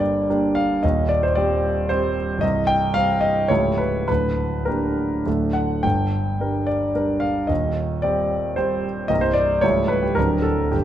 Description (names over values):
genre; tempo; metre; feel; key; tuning
classical, romantic character piece for solo piano; 99-117 BPM; 3/4; rubato; G minor; A4 = 443 Hz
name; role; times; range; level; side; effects
warm concert grand piano; solo; 0.0-10.8 s; C1 to G5; -18 LUFS; equal; none
room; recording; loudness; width
moderate recital hall reverb, RT60 1.8 s; close, detailed microphones; -18 LUFS; side -11 dB against mid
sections
0.0-10.8 A section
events
none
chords
0.0 Gm; 0.8 Cm/Eb; 2.4 C5; 3.5 A7/C#; 4.1 Gm/D; 5.3 D; 5.8 Gm; 7.5 Cm/Eb; 9.1 C5; 9.6 A7/C#; 10.2 D7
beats
0.29 | 0.83 1.37 1.90 | 2.42 2.95 3.50 | 4.08 4.67 5.26 | 5.84 6.40 6.95 | 7.50 8.04 8.58 | 9.10 9.62 10.17 | 10.74